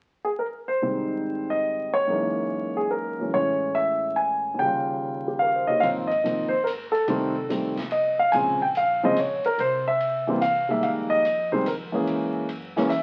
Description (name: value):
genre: jazz piano trio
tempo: 144 BPM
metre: 3/4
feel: swing 67% on 8ths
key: Ab major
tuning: A4 = 440 Hz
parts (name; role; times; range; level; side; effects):
- warm grand piano; melody; 0.2-13.0 s; Eb2 to G#5; -24 LUFS; equal; none
- upright bass; bass; 5.8-13.0 s; F1 to Gb2; -44 LUFS; equal; none
- swinging big-band drum kit; drums; 5.8-13.0 s; hi-hat, kick drum, ride cymbal, snare drum; -42 LUFS; equal; none
room: moderate studio reverb, RT60 0.9 s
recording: very old 78 rpm record, vinyl crackle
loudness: -25 LUFS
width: mono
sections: 0.8-5.8 A section; 5.8-13.0 B section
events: none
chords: 0.0 N.C.; 0.8 Abmaj7; 2.1 Gb13; 3.3 Amaj7; 4.6 Eb9; 5.8 Ab69; 7.1 F7; 8.3 Bbm7; 9.6 C; 10.8 Fm7; 12.1 Gb9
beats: 0.40 | 0.82 1.24 1.66 | 2.08 2.50 2.92 | 3.33 3.75 4.17 | 4.59 5.00 5.42 | 5.84 6.26 6.67 | 7.09 7.50 7.92 | 8.34 8.75 9.17 | 9.58 10.00 10.41 | 10.83 11.24 11.66 | 12.07 12.49 12.90